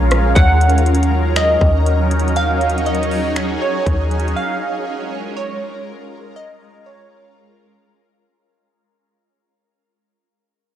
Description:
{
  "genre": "hip hop, atmospheric cloud-rap",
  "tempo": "120 BPM",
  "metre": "4/4",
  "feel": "half-time",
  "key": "Eb minor",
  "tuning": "A4 = 440 Hz",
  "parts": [
    { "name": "glassy wavetable pluck", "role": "melody", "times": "0.0-8.3 s", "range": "Db5 to Gb5", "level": "-21 LUFS", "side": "right 1 dB", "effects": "chorus, analog delay" },
    { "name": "shimmering ambient pad", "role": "sustained chords", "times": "0.0-8.3 s", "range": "Gb3 to Bb4", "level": "-20 LUFS", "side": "equal", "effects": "chorus, built-in reverb, phaser, sidechain pumping" },
    { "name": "soft 808-style bass", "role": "bass", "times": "0.0-4.3 s", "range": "Bb1 to Eb2", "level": "-16 LUFS", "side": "equal", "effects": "none" },
    { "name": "trap drum kit", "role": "drums", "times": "0.1-4.4 s", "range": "finger snaps, hi-hat, kick drum, rim click", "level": "-19 LUFS", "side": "equal", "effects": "none" }
  ],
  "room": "digital ambience",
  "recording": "dry, gritty hardware recording, cassette tape",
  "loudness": "-14 LUFS",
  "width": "side -10 dB against mid",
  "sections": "0.4-8.4 A section",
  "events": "fade-out 0.4-8.4",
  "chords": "0.4 Ebm7; 4.4 Bbm7"
}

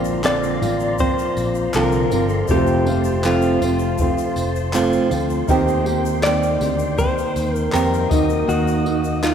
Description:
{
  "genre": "acoustic pop",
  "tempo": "80 BPM",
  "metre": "4/4",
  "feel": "straight",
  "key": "Bb major",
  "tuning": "A4 = 437 Hz",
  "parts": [
    { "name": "clear upright piano", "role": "accompaniment", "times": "0.0-9.3 s", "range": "Gb3 to Eb5", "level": "-27 LUFS", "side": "left 4 dB", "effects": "none" },
    { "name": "nylon-string guitar", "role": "accompaniment", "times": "0.0-9.3 s", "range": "F2 to G4", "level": "-21 LUFS", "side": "right 3 dB", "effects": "none" },
    { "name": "tonewheel organ", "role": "sustained chords", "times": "0.0-9.3 s", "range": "Bb3 to Eb6", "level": "-29 LUFS", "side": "left 1 dB", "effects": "chorus vibrato, slow rotary speaker" },
    { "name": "fingered electric bass", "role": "bass", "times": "0.0-9.3 s", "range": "F1 to F2", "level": "-24 LUFS", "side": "equal", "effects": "none" },
    { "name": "tube shaker", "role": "percussion", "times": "0.0-9.3 s", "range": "none", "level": "-39 LUFS", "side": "left 10 dB", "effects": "none" },
    { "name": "jazz brush drum kit", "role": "drums", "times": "0.2-9.3 s", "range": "handclaps, kick drum, tambourine", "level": "-27 LUFS", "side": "left 1 dB", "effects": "none" },
    { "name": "direct-recorded clean electric guitar", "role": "melody", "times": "0.3-9.3 s", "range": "F4 to D5", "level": "-23 LUFS", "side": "left 3 dB", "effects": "none" }
  ],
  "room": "wet church reverb, RT60 3.5 s",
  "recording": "recorded in a church or concert hall",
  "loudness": "-16 LUFS",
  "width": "side -8 dB against mid",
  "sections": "0.0-9.3 A section",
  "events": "none",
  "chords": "0.0 Bbadd9; 2.5 F; 5.5 Cm7; 8.1 Ebm"
}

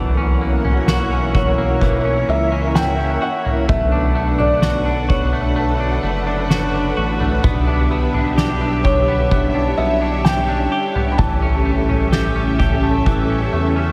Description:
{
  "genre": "dream pop",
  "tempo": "64 BPM",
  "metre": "4/4",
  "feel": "straight",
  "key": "B minor",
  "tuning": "A4 = 440 Hz",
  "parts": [
    { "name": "string machine, cellos", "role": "sustained chords", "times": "0.0-13.9 s", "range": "C#4 to F#5", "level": "-24 LUFS", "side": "equal", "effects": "ensemble chorus" },
    { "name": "semi-hollow electric guitar", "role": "arpeggios", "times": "0.0-13.9 s", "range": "E3 to G4", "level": "-26 LUFS", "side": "equal", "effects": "lush chorus, tape echo" },
    { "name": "fat analog bass", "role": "bass", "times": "0.0-13.9 s", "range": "F#1 to E2", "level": "-24 LUFS", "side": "equal", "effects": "none" },
    { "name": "drifting glass-harmonics texture", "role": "texture", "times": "0.7-3.8 s", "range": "C#5 to E5", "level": "-37 LUFS", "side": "equal", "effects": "chorus, built-in reverb, tape echo" },
    { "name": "soft-mallet drum kit", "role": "drums", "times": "0.6-13.3 s", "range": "kick drum, snare drum, toms", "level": "-22 LUFS", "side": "equal", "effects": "none" },
    { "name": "felt-muted upright piano", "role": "melody", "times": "1.4-13.9 s", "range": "C#5 to B5", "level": "-25 LUFS", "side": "equal", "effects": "lush chorus, tape echo" }
  ],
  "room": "moderate plate reverb, RT60 3.5 s",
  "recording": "dreamy mix soaked in reverb",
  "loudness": "-18 LUFS",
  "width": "mono",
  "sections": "0.0-13.9 A section",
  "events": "none",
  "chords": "0.0 F#7/B; 3.7 Bm7; 7.4 Em7/B; 11.2 A7"
}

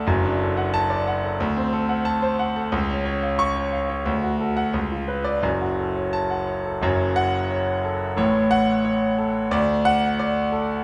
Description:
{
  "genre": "classical, virtuoso piano study",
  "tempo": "90 BPM",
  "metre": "2/4",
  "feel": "rubato",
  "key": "F# minor",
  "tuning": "A4 = 440 Hz",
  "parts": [
    { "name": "clear concert grand piano", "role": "solo", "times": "0.0-10.8 s", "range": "F#1 to C#6", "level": "-23 LUFS", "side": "equal", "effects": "none" }
  ],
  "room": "wet recital hall reverb, RT60 1.4 s",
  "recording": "none",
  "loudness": "-23 LUFS",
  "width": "mono",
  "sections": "0.0-6.8 A section; 6.8-10.8 B section",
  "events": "none",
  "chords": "0.1 D/F#; 1.4 D7; 2.7 C#; 4.1 D; 4.8 C#7b9; 5.4 F#m; 8.2 F#m/A; 9.5 D"
}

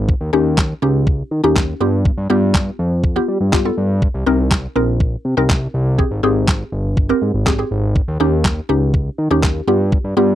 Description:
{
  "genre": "dance-pop",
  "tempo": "122 BPM",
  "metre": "4/4",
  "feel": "straight",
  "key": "unclear",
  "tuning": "A4 = 440 Hz",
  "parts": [
    { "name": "mallet-like synth pluck", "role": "accompaniment", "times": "0.0-10.3 s", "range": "B3 to Bb4", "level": "-18 LUFS", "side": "left 1 dB", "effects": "chorus, phaser, sidechain pumping" },
    { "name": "fat analog bass", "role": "bass", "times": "0.0-10.3 s", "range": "G1 to G3", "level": "-18 LUFS", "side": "equal", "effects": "sidechain pumping" },
    { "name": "clean 12-bit digital drum machine", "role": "drums", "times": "0.1-10.0 s", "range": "handclaps, kick drum, snare drum", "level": "-16 LUFS", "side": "equal", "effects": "none" }
  ],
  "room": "little or no reverb",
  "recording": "dry, close 1970s-style studio recording",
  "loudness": "-14 LUFS",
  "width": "side -12 dB against mid",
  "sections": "0.0-10.3 A section",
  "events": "none",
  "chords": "0.1 Eb7; 1.8 G7; 4.0 Cm7; 6.0 Abmaj7; 8.0 Eb7; 9.7 G7"
}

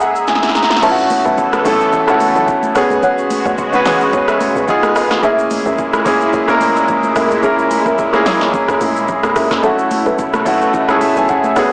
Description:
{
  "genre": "amapiano",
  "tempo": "109 BPM",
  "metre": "4/4",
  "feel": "swing 55% on 16ths",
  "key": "unclear",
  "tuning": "A4 = 440 Hz",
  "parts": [
    { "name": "clear grand piano", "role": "accompaniment", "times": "0.0-11.7 s", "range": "G#3 to A#5", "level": "-14 LUFS", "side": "equal", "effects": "none" },
    { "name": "lush unison pad", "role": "sustained chords", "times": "0.0-11.7 s", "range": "A#2 to A#5", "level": "-19 LUFS", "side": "equal", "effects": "chorus, phaser, sidechain pumping" },
    { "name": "vintage muted fingered electric bass", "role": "bass", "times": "0.0-0.8 s", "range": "F#1", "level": "-49 LUFS", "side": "equal", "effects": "none" },
    { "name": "deep house drum kit", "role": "drums", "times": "0.0-11.7 s", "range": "crash cymbal, hi-hat, kick drum, rim click, shaker, snare drum", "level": "-20 LUFS", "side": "equal", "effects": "overdrive" },
    { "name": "deep mellow chord stab", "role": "stabs", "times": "0.8-11.7 s", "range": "E#4 to A5", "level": "-18 LUFS", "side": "equal", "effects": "chorus, phaser, tape echo" },
    { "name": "tight log drum bass", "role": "bass", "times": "0.8-11.7 s", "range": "A1 to F#3", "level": "-24 LUFS", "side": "equal", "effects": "none" },
    { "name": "congas", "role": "percussion", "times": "1.1-11.6 s", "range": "none", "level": "-27 LUFS", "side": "equal", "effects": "none" }
  ],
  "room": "moderate digital room reverb, RT60 1.2 s",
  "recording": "blown-out, overdriven recording, overdrive, small speaker sound",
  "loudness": "-11 LUFS",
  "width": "side -38 dB against mid",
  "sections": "0.8-11.7 A section",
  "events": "grand piano fill 0.0-0.8; drum fill 0.3-0.8; drop 0.8-11.7",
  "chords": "0.0 F#9; 0.8 B7sus4; 2.8 E69; 4.7 G#m6/D#; 5.2 F#9; 9.6 B7sus4"
}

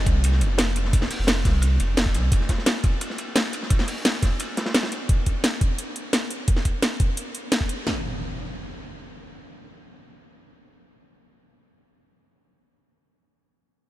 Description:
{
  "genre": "liquid drum and bass",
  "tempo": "173 BPM",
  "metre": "4/4",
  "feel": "straight",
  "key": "unclear",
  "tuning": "A4 = 440 Hz",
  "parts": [
    { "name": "warm sub bass", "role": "bass", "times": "0.0-2.3 s", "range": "F1 to C2", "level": "-21 LUFS", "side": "equal", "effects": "none" },
    { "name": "crunchy breakbeat drum kit", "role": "drums", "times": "0.1-5.0 s", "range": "hi-hat, ride cymbal, snare drum", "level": "-31 LUFS", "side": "equal", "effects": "high-pass filter on cymbals, high-pass filter on hats, high-pass filter on snare, high-pass filter on room" },
    { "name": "drum and bass drum kit", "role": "drums", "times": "0.1-7.9 s", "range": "kick drum, snare drum", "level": "-21 LUFS", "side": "equal", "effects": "none" },
    { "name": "drum and bass drum kit", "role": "drums", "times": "0.1-7.8 s", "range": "hi-hat, snare drum", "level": "-25 LUFS", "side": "equal", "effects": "none" },
    { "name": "impact", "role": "sound effects", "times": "7.9-12.1 s", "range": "none", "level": "-38 LUFS", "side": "equal", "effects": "none" }
  ],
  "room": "light reverb, small room ambience",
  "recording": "none",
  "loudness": "-21 LUFS",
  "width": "side -15 dB against mid",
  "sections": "0.0-7.9 A section; 7.9-10.6 B section",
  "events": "none",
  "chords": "none"
}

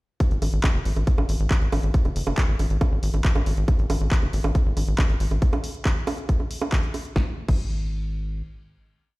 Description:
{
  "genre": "psychedelic trance",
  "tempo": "138 BPM",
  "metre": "4/4",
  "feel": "straight",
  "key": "unclear",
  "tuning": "A4 = 440 Hz",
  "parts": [
    { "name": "electronic kick drum", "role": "drums", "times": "0.2-7.6 s", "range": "none", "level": "-20 LUFS", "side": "equal", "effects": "overdrive" },
    { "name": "techno drum kit", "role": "drums", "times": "0.2-7.6 s", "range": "bongos, crash cymbal, handclaps, hi-hat, snare drum", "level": "-29 LUFS", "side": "right 2 dB", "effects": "overdrive" },
    { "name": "tight sequencer bass", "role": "bass", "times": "0.3-8.4 s", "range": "F#1 to G#1", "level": "-23 LUFS", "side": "equal", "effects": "none" }
  ],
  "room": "little or no reverb",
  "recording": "played on a big sound system in a bare room, stone room reverb",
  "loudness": "-21 LUFS",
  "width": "side -21 dB against mid",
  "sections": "0.2-7.2 groove; 7.2-9.2 final note",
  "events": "none",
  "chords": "none"
}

